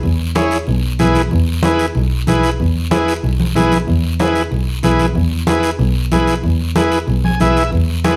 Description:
latin, cumbia; 187 BPM; 4/4; straight; E major; A4 = 440 Hz
muted double bass; bass; 0.0-8.2 s; B1 to E2; -19 LUFS; equal
guiro; percussion; 0.0-8.2 s; -32 LUFS; equal
congas; percussion; 0.2-8.2 s; -22 LUFS; equal
combo organ; accompaniment; 0.4-8.2 s; E4 to G#5; -19 LUFS; equal
moderate studio reverb, RT60 0.8 s; -16 LUFS; mono
0.0-8.2 A section
transistor combo organ fill 7.1-7.7
0.0 E

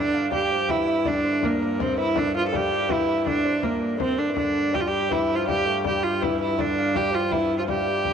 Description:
medieval dance; 163 BPM; 3/4; straight; G dorian; A4 = 440 Hz
rich viola da gamba; melody; 0.0-8.1 s; Bb3 to A4; -23 LUFS; right 2 dB
concert harp; second line; 0.0-8.1 s; Bb4 to G5; -32 LUFS; right 8 dB
dark bassoon; second line; 0.0-8.1 s; Bb2 to A3; -30 LUFS; left 11 dB
clear viola da gamba; drone; 0.0-8.1 s; G2; -33 LUFS; left 2 dB
frame drum; percussion; 0.1-8.1 s; -34 LUFS; left 9 dB
wet spring reverb, RT60 2.6 s; 1960s-style stereo with parts hard left and right; -21 LUFS; side -7 dB against mid
0.0-8.1 A section

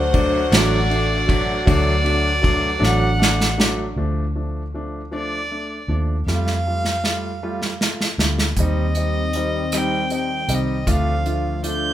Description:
six-eight pop ballad; 52 BPM (dotted quarters); 6/8; straight; A4 = 439 Hz
warm violin; melody; 0.0-11.9 s; C5 to G6; -24 LUFS; equal
warm studio violin section; second line; 0.0-3.6 s; F#5; -32 LUFS; equal
warm analog pad; sustained chords; 0.0-3.9, 8.6-11.9 s; D3 to D5; -28 LUFS; left 2 dB; chorus
vintage muted fingered electric bass; bass; 0.0-11.9 s; A1 to F2; -22 LUFS; equal
clear concert grand piano; accompaniment; 0.1-11.9 s; F3 to F4; -25 LUFS; equal
unplugged drum kit; drums; 0.1-11.8 s; hi-hat, kick drum, ride cymbal, rim click, snare drum; -21 LUFS; equal
light reverb; band playing live in one room; -18 LUFS; side -12 dB against mid
0.0-4.0 A section; 4.0-11.9 B section
drum fill 2.8-4.0, 6.3-8.6
0.0 D; 4.0 Dm; 6.3 Fadd9; 8.6 Cm/Eb; 10.9 Dm

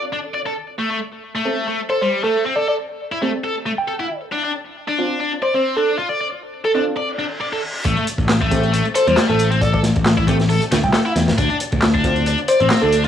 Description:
breakbeat, breaks; 136 BPM; 4/4; swing 54% on 16ths; A minor; A4 = 443 Hz
tight distorted guitar; riff; 0.1-13.1 s; G3 to D5; -21 LUFS; left 1 dB; distortion, tube saturation, vintage 12-bit sampler grit, low-pass filter, tape echo
orchestra-hit-like synth stab; stabs; 1.5-12.2 s; A3 to A4; -26 LUFS; right 1 dB; built-in reverb, cassette tape, tape echo
bell-like FM electric piano; melody; 1.9-13.0 s; A4 to G5; -21 LUFS; equal; chorus, tremolo, telephone sound, tape echo
reverse cymbal; sound effects; 7.1-7.9 s; -28 LUFS; equal
modern bright picked electric bass; bass; 7.9-13.1 s; A1 to E2; -19 LUFS; left 1 dB; tube saturation
crunchy breakbeat drum kit; drums; 7.9-13.0 s; hi-hat, kick drum, snare drum; -20 LUFS; equal
punchy analog drum machine; drums; 7.9-13.1 s; handclaps, hi-hat; -26 LUFS; equal
light reverb; dry, gritty hardware recording, cassette tape, small room ambience; -16 LUFS; side -9 dB against mid
0.0-7.9 A section; 7.9-13.1 B section
filter sweep on synth stab 0.0-7.9; reverse cymbal 7.1-7.9; drop 7.9-13.1
0.0 D5; 0.8 Am7; 4.3 Dm7; 7.9 Am7; 11.4 Dm7

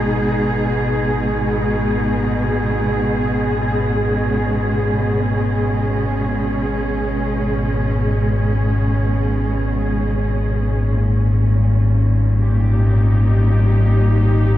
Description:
dark ambient drone; free time; G# harmonic minor; A4 = 440 Hz
dark studio cello section; sustained chords; 0.0-14.6 s; A#2 to G#4; -19 LUFS; right 1 dB
deep rumbling drone; drone; 0.0-14.6 s; G#1 to G#2; -18 LUFS; left 1 dB; built-in reverb
moderate huge ambient reverb, RT60 7.9 s; -15 LUFS; side -13 dB against mid
0.0-14.6 A section
0.0 G#m; 10.9 D#/G#

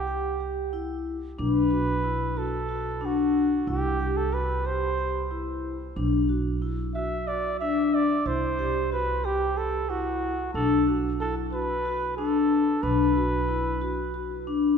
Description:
contemporary instrumental, chamber music in an uneven meter; 184 BPM (eighths); 7/8; straight; B phrygian; A4 = 440 Hz
mellow flugelhorn; melody; 0.0-14.5 s; F#4 to E5; -29 LUFS; right 2 dB
upright bass; bass; 0.0-14.8 s; B1 to C2; -31 LUFS; right 2 dB
vibraphone with medium mallets; arpeggios; 0.1-14.8 s; D4 to G4; -26 LUFS; left 3 dB
wet church reverb, RT60 3.4 s; recorded in a church or concert hall; -24 LUFS; side -6 dB against mid
0.0-14.8 A section
0.0 C; 1.4 Bm7; 3.7 C; 6.0 Bm; 8.3 C; 10.5 Bm

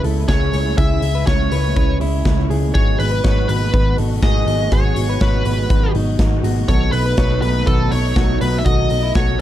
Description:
jangly indie pop; 122 BPM; 4/4; straight; A4 = 440 Hz
fingerpicked plugged-in steel-string acoustic guitar; accompaniment; 0.0-9.4 s; G#2 to A4; -25 LUFS; right 5 dB
warm analog pad; sustained chords; 0.0-9.4 s; B2 to F#4; -29 LUFS; right 2 dB; chorus
direct-recorded clean electric guitar; arpeggios; 0.0-9.4 s; D#4 to C#5; -27 LUFS; left 6 dB; tape echo
vintage muted picked electric bass; bass; 0.0-9.4 s; G#1 to C#2; -19 LUFS; equal
big rock drum kit; drums; 0.0-9.3 s; hi-hat, kick drum, snare drum; -19 LUFS; equal
smooth overdriven lead guitar; melody; 0.3-9.4 s; A4 to E5; -23 LUFS; left 1 dB; tape echo
warm studio violin section; second line; 0.3-9.4 s; A5 to E6; -34 LUFS; left 1 dB
small room ambience; dark, warm production; -14 LUFS; side -12 dB against mid
0.0-9.4 A section
0.0 C#m; 2.8 G#m7; 6.7 B7

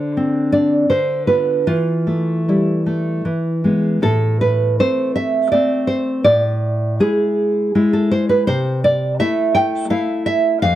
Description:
romantic piece for solo classical guitar; 74-86 BPM; 3/4; rubato; A minor; A4 = 440 Hz
nylon-string guitar; solo; 0.0-10.8 s; F2 to G5; -15 LUFS; equal
light reverb; -15 LUFS; side -13 dB against mid
0.0-4.0 A section; 4.0-10.8 B section
0.0 Csus2/D; 0.9 Bdim/D; 1.7 A5/E; 3.2 E; 4.0 Am; 6.3 E7/A; 8.5 Am/C

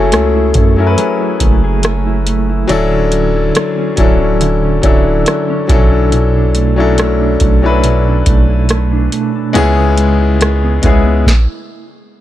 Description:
contemporary R&B; 70 BPM; 4/4; swing 54% on 16ths; F# minor; A4 = 440 Hz
clear baby grand piano; accompaniment; 0.0-11.3 s; F#3 to B4; -14 LUFS; left 4 dB
mellow electric guitar; arpeggios; 0.0-11.9 s; B2 to G#4; -17 LUFS; right 2 dB; tremolo, tape echo
long sustained 808-style bass; bass; 0.0-11.2 s; D1 to F#2; -14 LUFS; equal
booming analog drum machine; drums; 0.1-11.5 s; hi-hat, kick drum, rim click, snare drum; -13 LUFS; right 1 dB
little or no reverb; -10 LUFS; side -13 dB against mid
0.0-12.2 A section
stop 11.3-12.2
0.0 F#m9; 2.7 Dmaj9; 5.7 Bm11; 9.6 C#m7; 11.3 N.C.

